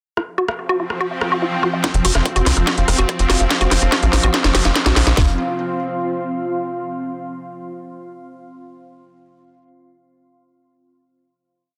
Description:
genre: psychedelic trance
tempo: 144 BPM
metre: 4/4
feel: straight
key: unclear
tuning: A4 = 440 Hz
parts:
  - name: swarming drone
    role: sustained chords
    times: 0.7-5.2 s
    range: F3 to C4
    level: -28 LUFS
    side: equal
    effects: built-in reverb, sidechain pumping
  - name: woody wave-folded pluck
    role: riff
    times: 0.2-5.4 s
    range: F4 to F5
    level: -25 LUFS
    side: equal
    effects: chorus, sidechain pumping, digital delay
  - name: drum and bass drum kit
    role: drums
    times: 0.2-5.2 s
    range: hi-hat, rim click, snare drum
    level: -22 LUFS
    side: equal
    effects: none
  - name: deep dark ambient pad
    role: texture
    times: 1.5-6.8 s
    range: C4 to C6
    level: -28 LUFS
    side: equal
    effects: chorus, built-in reverb, sidechain pumping
  - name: swell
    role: sound effects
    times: 1.2-1.8 s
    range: none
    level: -33 LUFS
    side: equal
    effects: none
  - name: drum and bass drum kit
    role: drums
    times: 1.8-5.3 s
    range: kick drum, snare drum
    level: -22 LUFS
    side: equal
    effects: high-pass filter on kick, high-pass filter on snare, high-pass filter on room
  - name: tight sequencer bass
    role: bass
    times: 1.9-5.4 s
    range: F1 to C2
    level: -19 LUFS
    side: equal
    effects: none
room: light reverb, digital ambience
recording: dense, heavily limited modern master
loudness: -18 LUFS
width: mono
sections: 0.2-1.8 intro; 1.8-5.2 build; 5.2-6.8 final chord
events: swell 1.2-1.8; build-up 1.8-5.2; drum fill 1.8-5.2; filter sweep on synth arpeggio sound 1.8-5.2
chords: 0.2 F5

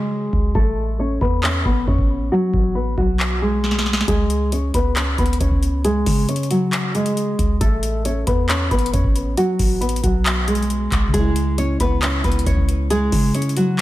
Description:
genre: hip hop, trap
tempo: 136 BPM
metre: 4/4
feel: half-time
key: C# minor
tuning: A4 = 440 Hz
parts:
  - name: nylon-string guitar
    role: melody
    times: 0.0-13.8 s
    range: F#3 to C#5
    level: -21 LUFS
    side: equal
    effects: low-pass filter, tape echo
  - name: clean 808-style bass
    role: bass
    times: 0.0-13.8 s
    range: A1 to C#3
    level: -22 LUFS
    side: equal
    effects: none
  - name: booming analog drum machine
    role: drums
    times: 0.3-13.8 s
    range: handclaps, hi-hat, kick drum, snare drum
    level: -21 LUFS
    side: equal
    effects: none
  - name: muted felt-like synth keys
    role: accompaniment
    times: 11.1-13.8 s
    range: C#3 to E4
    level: -26 LUFS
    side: equal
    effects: chorus, low-pass filter
room: digital ambience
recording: none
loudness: -16 LUFS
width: side -15 dB against mid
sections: 0.0-13.8 A section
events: break 0.0-4.1; filter sweep 0.0-11.1; drum fill 3.6-4.1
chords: 0.0 C#5; 0.6 A; 2.3 B5; 4.1 C#5; 7.6 A; 9.4 B5; 11.1 C#m

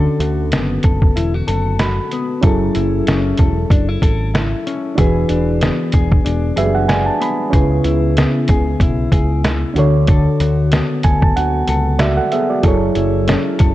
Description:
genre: indie pop, bedroom pop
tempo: 94 BPM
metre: 4/4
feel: swing 55% on 16ths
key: F# minor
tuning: A4 = 444 Hz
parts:
  - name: mellow electric guitar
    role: accompaniment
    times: 0.0-13.7 s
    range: C#3 to A4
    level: -19 LUFS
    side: left 4 dB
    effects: lush chorus, warbly pitch drift
  - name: reed electric piano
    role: accompaniment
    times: 0.0-13.7 s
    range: C#4 to B5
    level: -20 LUFS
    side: right 4 dB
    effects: none
  - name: picked electric bass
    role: bass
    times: 0.0-13.7 s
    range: E1 to D2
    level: -18 LUFS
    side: equal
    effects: none
  - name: lo-fi sampler-style drum kit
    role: drums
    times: 0.2-13.7 s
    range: hi-hat, kick drum, snare drum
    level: -16 LUFS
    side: equal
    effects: none
room: light reverb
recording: cassette tape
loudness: -13 LUFS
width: side -15 dB against mid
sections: 0.0-13.7 A section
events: reed electric piano fill 1.5-2.4, 6.3-7.5, 10.7-12.6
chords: 0.0 Bm7; 2.4 F#m7; 5.0 E7; 7.5 C#m7; 9.8 Bm7/D; 12.6 F#m7

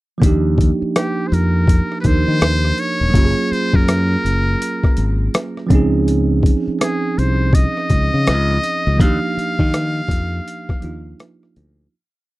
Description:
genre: R&B, neo-soul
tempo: 82 BPM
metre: 4/4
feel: swing 62% on 16ths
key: Eb major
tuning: A4 = 438 Hz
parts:
  - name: bell-like tine electric piano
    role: accompaniment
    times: 0.2-11.9 s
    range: F3 to Bb4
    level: -21 LUFS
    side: right 3 dB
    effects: none
  - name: modern bright fingered electric bass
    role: bass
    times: 0.2-11.9 s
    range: Eb1 to Eb3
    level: -17 LUFS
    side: left 1 dB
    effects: none
  - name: boom bap sampler-style drum kit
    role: drums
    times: 0.2-11.8 s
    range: hi-hat, kick drum, rim click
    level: -16 LUFS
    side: left 1 dB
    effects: overdrive
  - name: trumpet with metal mute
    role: melody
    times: 1.0-11.2 s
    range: G4 to F5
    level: -22 LUFS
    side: left 1 dB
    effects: none
room: little or no reverb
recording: dry, close 1970s-style studio recording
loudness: -14 LUFS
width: side -18 dB against mid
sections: 0.2-11.9 A section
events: fade-out 9.0-11.9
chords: 0.2 Ebmaj9; 3.1 Gbmaj9; 5.7 Dbmaj9; 9.0 Ebmaj9

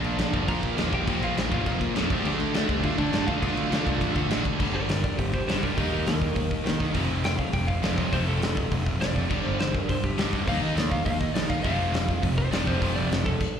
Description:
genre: punk rock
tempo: 204 BPM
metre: 4/4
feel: straight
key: G minor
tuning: A4 = 440 Hz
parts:
  - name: lightly driven lead guitar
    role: melody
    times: 0.0-13.6 s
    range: A3 to Bb5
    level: -32 LUFS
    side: equal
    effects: none
  - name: crunchy overdriven guitar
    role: riff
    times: 0.0-13.2 s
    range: F2 to Eb4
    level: -32 LUFS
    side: left 10 dB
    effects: none
  - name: distorted electric guitar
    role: riff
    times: 0.0-13.4 s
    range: F2 to Eb4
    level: -32 LUFS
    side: equal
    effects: distortion
  - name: tight distorted guitar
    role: riff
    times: 0.0-13.2 s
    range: F2 to Eb4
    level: -34 LUFS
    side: right 12 dB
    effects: distortion
  - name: fuzz picked electric bass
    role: bass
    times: 0.0-13.3 s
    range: F1 to Eb3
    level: -29 LUFS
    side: equal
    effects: overdrive
  - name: big rock drum kit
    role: drums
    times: 0.0-13.5 s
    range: crash cymbal, hi-hat, kick drum, snare drum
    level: -28 LUFS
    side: equal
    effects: none
room: light reverb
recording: live gig heard through the venue's PA, club reverb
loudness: -23 LUFS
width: side -8 dB against mid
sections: 0.0-4.6 A section; 4.6-13.6 B section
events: lead electric guitar solo 4.6-13.6; stop 13.4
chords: 0.0 Bb; 2.1 Dm; 4.6 Gm; 5.8 Eb; 7.0 F; 9.3 G5; 10.5 Eb5; 11.6 F5

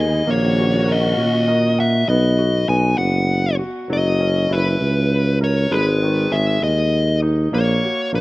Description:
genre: six-eight pop ballad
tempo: 66 BPM (dotted quarters)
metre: 6/8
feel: straight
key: B major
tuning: A4 = 440 Hz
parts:
  - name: dark smooth lead guitar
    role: melody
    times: 0.0-8.2 s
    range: B4 to G#5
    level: -21 LUFS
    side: left 2 dB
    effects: overdrive
  - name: clear baby grand piano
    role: accompaniment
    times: 0.0-8.2 s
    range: D#3 to F#5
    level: -25 LUFS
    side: equal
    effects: none
  - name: dark studio string section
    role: sustained chords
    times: 0.0-2.1 s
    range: D#3 to G#4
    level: -27 LUFS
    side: equal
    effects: none
  - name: mellow tuba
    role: bass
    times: 0.0-8.2 s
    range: F#1 to A#2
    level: -18 LUFS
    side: equal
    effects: none
room: small room ambience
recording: rough home demo mix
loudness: -15 LUFS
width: side -18 dB against mid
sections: 0.0-2.1 A section; 2.1-8.2 B section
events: grand piano fill 1.2-2.1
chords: 0.3 D#m7/A#; 2.1 B; 3.9 F#7; 5.7 G#m; 7.5 F#/A#

